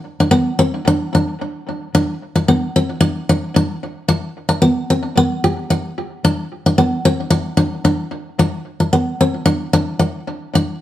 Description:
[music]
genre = highlife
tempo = 112 BPM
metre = 4/4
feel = straight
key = G major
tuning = A4 = 444 Hz
[part]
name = picked steel-string acoustic guitar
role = solo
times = 0.2-10.7 s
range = B3 to G4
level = -15 LUFS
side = left 1 dB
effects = tape echo
[sound]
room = moderate studio reverb, RT60 0.8 s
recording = none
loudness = -15 LUFS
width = side -13 dB against mid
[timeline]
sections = 0.0-8.4 A section; 8.4-10.8 B section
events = none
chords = none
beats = 0.33 0.87 1.41 | 1.94 2.48 3.02 3.56 | 4.09 4.63 5.17 5.71 | 6.25 6.79 7.32 7.86 | 8.40 8.94 9.48 10.02 | 10.56

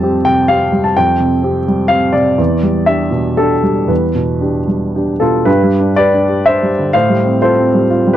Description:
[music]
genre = neoclassical minimalist piano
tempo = 113-129 BPM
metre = 3/4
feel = rubato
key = unclear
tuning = A4 = 439 Hz
[part]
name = warm grand piano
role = solo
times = 0.0-8.2 s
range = E2 to A5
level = -11 LUFS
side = equal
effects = none
[sound]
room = little or no reverb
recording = dry, close 1970s-style studio recording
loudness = -11 LUFS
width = side -12 dB against mid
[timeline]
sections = 0.0-5.5 A section; 5.5-8.2 B section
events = none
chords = 0.0 Fadd9; 2.4 Em7; 5.5 G; 6.9 Fadd9/A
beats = 0.01 0.48 | 0.95 1.43 1.90 | 2.39 2.87 3.38 | 3.90 4.43 4.95 | 5.47 5.96 6.45 | 6.94 7.42 7.90

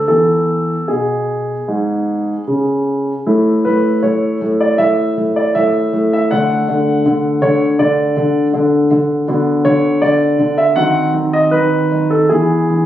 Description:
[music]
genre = classical-period piano sonatina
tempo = 75-82 BPM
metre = 4/4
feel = rubato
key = A major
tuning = A4 = 440 Hz
[part]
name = warm concert grand piano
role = solo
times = 0.0-12.9 s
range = G#2 to F#5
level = -12 LUFS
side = equal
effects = none
[sound]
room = light reverb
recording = recorded on a phone in the room, studio reverb, compression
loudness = -12 LUFS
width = side -12 dB against mid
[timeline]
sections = 0.0-3.3 A section; 3.3-12.9 B section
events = none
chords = 0.1 E; 3.3 A5; 6.3 D; 9.3 Bm/D; 10.8 D#dim7; 12.3 E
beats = | 0.09 0.89 1.68 2.48 | 3.27 4.03 4.79 5.55 | 6.31 7.05 7.79 8.53 | 9.27 10.02 10.76 11.52 | 12.30

